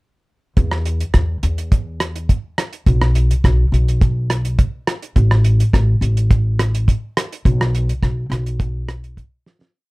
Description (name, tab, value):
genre	calypso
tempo	105 BPM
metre	4/4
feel	straight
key	unclear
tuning	A4 = 436 Hz
part	upright bass	bass	0.6-9.2 s	A1 to E2	-16 LUFS	equal	none
part	damped 70s drum kit	drums	0.6-9.7 s	hi-hat, kick drum, rim click, snare drum	-16 LUFS	equal	none
room	little or no reverb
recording	dark, warm production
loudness	-15 LUFS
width	side -24 dB against mid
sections	0.6-9.7 verse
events	fade-out 7.4-9.7; drum fill 9.5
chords	none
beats	| 0.57 1.14 1.72 2.29 | 2.86 3.44 4.01 4.58 | 5.16 5.73 6.30 6.87 | 7.45 8.02 8.59 9.17